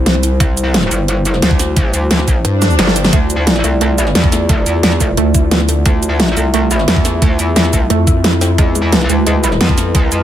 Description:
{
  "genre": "dark technical drum and bass",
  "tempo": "176 BPM",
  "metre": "4/4",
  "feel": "straight",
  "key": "unclear",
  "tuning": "A4 = 440 Hz",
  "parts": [
    { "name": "dark analog pad", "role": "sustained chords", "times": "0.0-10.2 s", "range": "G3 to E5", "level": "-20 LUFS", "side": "left 2 dB", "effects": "chorus, sidechain pumping" },
    { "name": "pulsing pluck wobble bass", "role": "bass", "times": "0.0-0.4, 2.4-2.8, 5.2-5.8, 7.9-8.6 s", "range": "C2 to G2", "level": "-14 LUFS", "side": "equal", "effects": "distortion, chorus" },
    { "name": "dubstep drum kit", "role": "drums", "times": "0.1-10.2 s", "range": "cabasa, hi-hat, snare drum", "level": "-15 LUFS", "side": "equal", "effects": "overdrive" },
    { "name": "metallic wobble bass", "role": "bass", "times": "0.4-10.2 s", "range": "G1 to F2", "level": "-15 LUFS", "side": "equal", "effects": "distortion, chorus, tube saturation" },
    { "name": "electronic kick drum", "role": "drums", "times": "0.4-10.0 s", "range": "none", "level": "-14 LUFS", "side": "equal", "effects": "overdrive" },
    { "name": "swell", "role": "sound effects", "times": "2.5-3.1 s", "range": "none", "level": "-22 LUFS", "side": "right 1 dB", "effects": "none" },
    { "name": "soft round pluck", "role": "arpeggios", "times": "3.1-10.2 s", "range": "G#3 to E4", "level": "-20 LUFS", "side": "right 5 dB", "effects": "chorus, sidechain pumping, digital delay" }
  ],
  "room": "light reverb",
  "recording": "none",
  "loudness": "-10 LUFS",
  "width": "side -11 dB against mid",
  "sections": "0.0-10.2 A section",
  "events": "kick drops out 2.4-3.1; swell 2.5-3.1; drum fill 2.6-3.1",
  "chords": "0.0 C; 3.1 Dmadd9; 8.6 E"
}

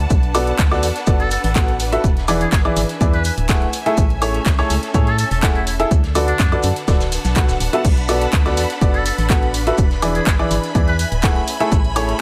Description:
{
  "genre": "piano house",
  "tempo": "124 BPM",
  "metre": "4/4",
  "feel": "straight",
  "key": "B dorian",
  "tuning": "A4 = 440 Hz",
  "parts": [
    { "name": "organ-like FM bass", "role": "bass", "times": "0.0-12.1 s", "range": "D1 to A2", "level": "-24 LUFS", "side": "equal", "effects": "sidechain pumping" },
    { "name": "clear symphonic string section", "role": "texture", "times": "0.0-12.2 s", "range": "C#4 to A5", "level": "-30 LUFS", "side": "equal", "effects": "sidechain pumping" },
    { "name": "electronic kick drum", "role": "drums", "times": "0.1-11.8 s", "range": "none", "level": "-19 LUFS", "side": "equal", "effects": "overdrive" },
    { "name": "house drum kit", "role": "drums", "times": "0.1-12.2 s", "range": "crash cymbal, handclaps, hi-hat, woodblock", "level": "-28 LUFS", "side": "equal", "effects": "none" },
    { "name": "raw garage drum kit", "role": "drums", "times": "0.1-12.1 s", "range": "hi-hat, shaker, snare drum", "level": "-35 LUFS", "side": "equal", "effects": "none" },
    { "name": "clear baby grand piano", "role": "riff", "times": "0.3-12.1 s", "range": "D3 to F#5", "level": "-23 LUFS", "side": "equal", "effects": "sidechain pumping" },
    { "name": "trumpet with metal mute", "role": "melody", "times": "1.2-11.1 s", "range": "D4 to B4", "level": "-29 LUFS", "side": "equal", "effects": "tape echo" },
    { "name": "string machine, violins", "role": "sustained chords", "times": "7.8-12.2 s", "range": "B5", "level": "-33 LUFS", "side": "equal", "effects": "ensemble chorus, sidechain pumping" }
  ],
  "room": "small room ambience",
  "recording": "none",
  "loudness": "-17 LUFS",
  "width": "mono",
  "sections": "0.0-12.2 A section",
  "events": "none",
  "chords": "0.1 Bm7; 2.0 E7; 3.7 Amaj7; 5.9 D6; 7.8 Bm7; 9.8 E7; 11.5 Amaj7"
}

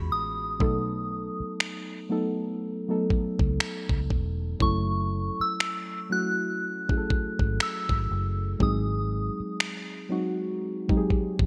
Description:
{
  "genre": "contemporary R&B",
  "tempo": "60 BPM",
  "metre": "4/4",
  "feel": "swing 58% on 16ths",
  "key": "F# dorian",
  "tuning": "A4 = 440 Hz",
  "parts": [
    { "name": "muted felt-like synth keys", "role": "accompaniment", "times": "0.0-11.5 s", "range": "E3 to A4", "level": "-32 LUFS", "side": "equal", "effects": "chorus" },
    { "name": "vintage muted fingered electric bass", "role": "bass", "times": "0.0-11.5 s", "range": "E1 to E2", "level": "-32 LUFS", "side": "equal", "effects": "none" },
    { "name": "soft synth bell", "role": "melody", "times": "0.1-9.6 s", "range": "C#6 to F#6", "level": "-34 LUFS", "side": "equal", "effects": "chorus, phaser, digital delay" },
    { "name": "dusty soul sampler-style drum kit", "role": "drums", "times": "0.6-11.5 s", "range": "finger snaps, kick drum", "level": "-29 LUFS", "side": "equal", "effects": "gated reverb" }
  ],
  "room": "light reverb, digital ambience",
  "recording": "bright 1980s-style digital production",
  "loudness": "-28 LUFS",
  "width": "mono",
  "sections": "0.0-11.5 A section",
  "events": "break 0.0-4.6",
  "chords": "0.0 C#m7; 0.6 B7; 4.6 F#m7; 8.6 G#7"
}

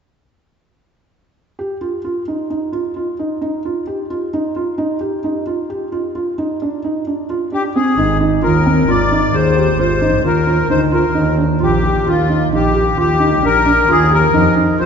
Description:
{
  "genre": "contemporary instrumental, contemporary",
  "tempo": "132 BPM",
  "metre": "7/4",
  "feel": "straight",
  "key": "Eb major",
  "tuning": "A4 = 439 Hz",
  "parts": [
    { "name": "felt-muted upright piano", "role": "arpeggios", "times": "1.6-14.9 s", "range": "C4 to Ab4", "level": "-18 LUFS", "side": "right 2 dB", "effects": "none" },
    { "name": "accordion", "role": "melody", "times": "7.5-14.9 s", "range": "F4 to D5", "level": "-16 LUFS", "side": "left 3 dB", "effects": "light tremolo tuning" },
    { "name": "rich double bass", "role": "bass", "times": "8.0-14.9 s", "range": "Ab1 to F2", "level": "-16 LUFS", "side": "right 1 dB", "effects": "none" }
  ],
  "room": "wet cathedral reverb, RT60 4.4 s",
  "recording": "recorded in a church or concert hall, nothing above 7.8 kHz",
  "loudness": "-14 LUFS",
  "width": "side -6 dB against mid",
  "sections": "1.6-8.0 A section; 8.0-14.9 B section",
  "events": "none",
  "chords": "1.6 Ebsus2; 4.8 Ebmaj9; 8.0 Ab69; 11.2 Ebmaj9; 14.3 F7(no3)"
}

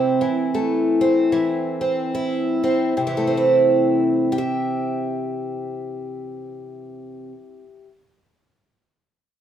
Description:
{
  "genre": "folk, solo fingerstyle acoustic guitar",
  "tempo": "71-78 BPM",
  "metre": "4/4",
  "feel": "swing 59% on 8ths",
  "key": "C major",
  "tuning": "A4 = 440 Hz",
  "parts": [
    { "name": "picked twelve-string acoustic guitar", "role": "solo", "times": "0.0-7.9 s", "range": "C3 to E5", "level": "-19 LUFS", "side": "equal", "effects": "none" }
  ],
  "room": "moderate large studio reverb, RT60 1.0 s",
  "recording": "band playing live in one room",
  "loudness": "-18 LUFS",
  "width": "side -10 dB against mid",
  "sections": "0.0-3.0 A section; 3.0-6.4 B section",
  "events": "slowing down 0.0-3.0",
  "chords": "0.0 C6"
}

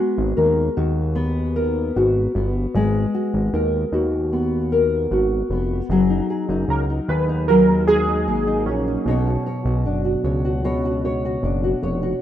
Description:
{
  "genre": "indie pop",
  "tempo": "76 BPM",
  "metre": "4/4",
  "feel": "straight",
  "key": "F# major",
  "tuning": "A4 = 443 Hz",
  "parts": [
    { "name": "nylon-string guitar", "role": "accompaniment", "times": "0.0-12.2 s", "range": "B2 to C#5", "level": "-20 LUFS", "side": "left 2 dB", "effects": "lush chorus, warbly pitch drift" },
    { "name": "fat analog bass", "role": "bass", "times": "0.2-12.1 s", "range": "E#1 to D#2", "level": "-22 LUFS", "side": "equal", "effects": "none" },
    { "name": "warm analog keys", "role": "melody", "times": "6.7-9.8 s", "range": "C#4 to B4", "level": "-20 LUFS", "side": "right 4 dB", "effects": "ensemble chorus, slapback echo" }
  ],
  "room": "light reverb",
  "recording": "rough home demo mix, nothing above 10.6 kHz",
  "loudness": "-18 LUFS",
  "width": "side -11 dB against mid",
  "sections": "0.0-5.9 A section; 5.9-12.2 B section",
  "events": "none",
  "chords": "0.0 G#m9; 5.9 F#69; 9.1 Bmadd9"
}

